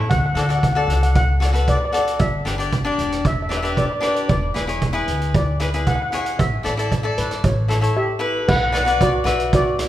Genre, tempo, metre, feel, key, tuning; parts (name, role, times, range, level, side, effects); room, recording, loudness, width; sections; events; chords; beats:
calypso; 115 BPM; 4/4; straight; D major; A4 = 436 Hz
cavaquinho; accompaniment; 0.0-9.7 s; D4 to E5; -23 LUFS; left 3 dB
steel pan; melody; 0.1-9.9 s; F#4 to F#5; -23 LUFS; equal
upright bass; bass; 0.1-9.8 s; E1 to D2; -22 LUFS; equal
street-band drum kit; drums; 0.1-9.9 s; crash cymbal, hi-hat, kick drum, rim click; -22 LUFS; right 2 dB
wet recital hall reverb, RT60 1.9 s; recorded in a church or concert hall; -17 LUFS; side -13 dB against mid
0.0-8.5 A section; 8.5-9.9 B section
break 8.0-8.5
0.1 Dmaj7; 2.2 G6; 4.3 E7; 6.4 A7sus4; 7.4 A7; 8.5 Bm
| 0.11 0.63 1.15 1.68 | 2.20 2.73 3.25 3.77 | 4.30 4.82 5.34 5.87 | 6.39 6.91 7.44 7.96 | 8.48 9.00 9.53